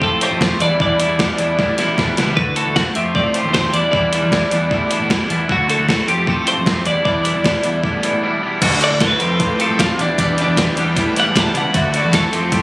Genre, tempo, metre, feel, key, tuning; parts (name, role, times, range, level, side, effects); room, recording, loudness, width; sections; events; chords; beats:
indie rock; 154 BPM; 4/4; straight; A4 = 440 Hz
twelve-string electric guitar; melody; 0.0-12.6 s; D4 to A5; -19 LUFS; equal; digital delay
biting overdriven guitar; riff; 0.0-12.6 s; E2 to F#4; -24 LUFS; right 2 dB; ensemble chorus
twangy electric guitar; riff; 0.0-12.6 s; E2 to G4; -21 LUFS; left 2 dB; wide subtle chorus
fuzz picked electric bass; bass; 0.0-12.6 s; A1 to A2; -21 LUFS; equal; overdrive
gated 80s digital drum machine; drums; 0.0-12.6 s; crash cymbal, hi-hat, kick drum, snare drum; -19 LUFS; equal; gated reverb, gated reverb snare
string machine, full ensemble; sustained chords; 8.6-12.6 s; A4 to D6; -30 LUFS; equal
light reverb; recorded on a phone in the room, studio reverb, compression; -14 LUFS; side -22 dB against mid
0.0-8.6 A section; 8.6-12.6 B section
drum fill 1.6-2.4; clean electric guitar solo 8.6-12.6
0.0 Fadd9; 0.6 Em7; 2.4 Dadd9; 3.0 Fadd9; 3.7 Em7; 5.5 Dadd9; 6.1 Fadd9; 6.9 Em7; 8.6 Dadd9; 9.2 Fadd9; 10.0 Em7; 11.7 Dadd9
0.02 0.41 | 0.80 1.19 1.58 1.97 | 2.37 2.76 3.15 3.54 | 3.93 4.32 4.71 5.10 | 5.49 5.88 6.27 6.67 | 7.06 7.45 7.84 8.23 | 8.62 9.01 9.40 9.79 | 10.18 10.57 10.96 11.35 | 11.74 12.13 12.52